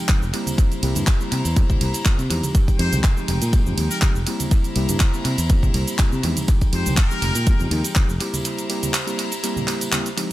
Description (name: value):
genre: filtered disco house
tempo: 122 BPM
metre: 4/4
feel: swing 54% on 16ths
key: unclear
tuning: A4 = 440 Hz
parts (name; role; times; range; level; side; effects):
- mellow tine electric piano; accompaniment; 0.0-10.3 s; F3 to G4; -27 LUFS; equal; phaser, sidechain pumping, dub echo
- bright chamber violin section; sustained chords; 0.0-10.3 s; Ab3 to Bb5; -33 LUFS; left 1 dB; sidechain pumping
- electronic kick drum; drums; 0.1-8.1 s; none; -17 LUFS; equal; none
- house drum kit; drums; 0.1-10.3 s; handclaps, hi-hat, ride cymbal, shaker; -26 LUFS; right 1 dB; sidechain pumping on hats, sidechain pumping on perc, sidechain pumping on cymbals, dub echo
- congas and tambourine; percussion; 0.1-10.2 s; none; -32 LUFS; right 2 dB; sidechain pumping on perc, dub echo
- overdriven fingered electric bass; bass; 0.2-8.2 s; F1 to C3; -22 LUFS; equal; sidechain pumping
- muted trumpet section; melody; 2.8-7.7 s; Bb4 to C5; -32 LUFS; left 2 dB; sidechain pumping, dub echo
room: little or no reverb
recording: echo-heavy mix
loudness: -18 LUFS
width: side -16 dB against mid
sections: 0.0-10.3 A section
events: break 8.5-10.3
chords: 0.3 C7; 2.6 Fm9; 4.3 C7; 6.5 Fm9; 8.2 C7